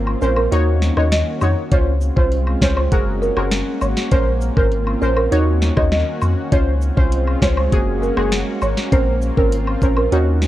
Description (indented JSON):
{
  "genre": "dancehall",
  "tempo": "100 BPM",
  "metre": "4/4",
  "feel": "straight",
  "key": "unclear",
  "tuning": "A4 = 439 Hz",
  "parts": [
    { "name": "lush unison pad", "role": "sustained chords", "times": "0.0-10.5 s", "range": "Eb3 to Gb4", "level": "-25 LUFS", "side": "equal", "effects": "chorus, sidechain pumping" },
    { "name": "punchy sub bass", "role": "bass", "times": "0.0-10.5 s", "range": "Gb1 to F2", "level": "-19 LUFS", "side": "equal", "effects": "none" },
    { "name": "woodblock and cabasa", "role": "percussion", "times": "0.1-10.5 s", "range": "none", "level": "-28 LUFS", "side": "left 2 dB", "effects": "none" },
    { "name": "buzzing marimba with medium mallets", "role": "melody", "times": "0.2-10.2 s", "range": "Bb4 to Eb5", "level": "-23 LUFS", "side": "right 2 dB", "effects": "none" },
    { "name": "synth brass stab", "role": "accompaniment", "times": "0.2-10.5 s", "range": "Bb3 to Db5", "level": "-23 LUFS", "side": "equal", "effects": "chorus" },
    { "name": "afro-pop drum kit", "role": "drums", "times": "0.5-10.5 s", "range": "hi-hat, kick drum, rim click, snare drum", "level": "-18 LUFS", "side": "equal", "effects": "none" }
  ],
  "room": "little or no reverb",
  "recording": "worn, warbling old tape, cassette tape, warbly pitch drift",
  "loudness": "-15 LUFS",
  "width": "side -14 dB against mid",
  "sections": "0.0-10.5 A section",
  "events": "break 0.0-1.7",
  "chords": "0.0 Bbmadd9; 0.5 Ebm7; 1.7 Dbmaj7; 2.9 Gbadd9; 4.1 Bbmadd9; 5.3 Ebm7; 6.5 Dbmaj7; 7.7 Gbadd9; 8.9 Bbmadd9"
}